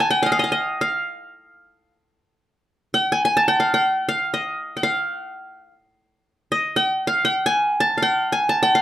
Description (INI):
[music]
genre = Arabic maqam ensemble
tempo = free time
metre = none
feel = none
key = F maqam saba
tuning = A4 = 441 Hz
[part]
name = qanun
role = solo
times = 0.0-8.8 s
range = Eb5 to A5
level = -18 LUFS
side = equal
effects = none
[sound]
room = moderate small room ambience, RT60 0.5 s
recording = rough home demo mix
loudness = -18 LUFS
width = side -12 dB against mid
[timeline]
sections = 0.0-8.8 A section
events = none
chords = none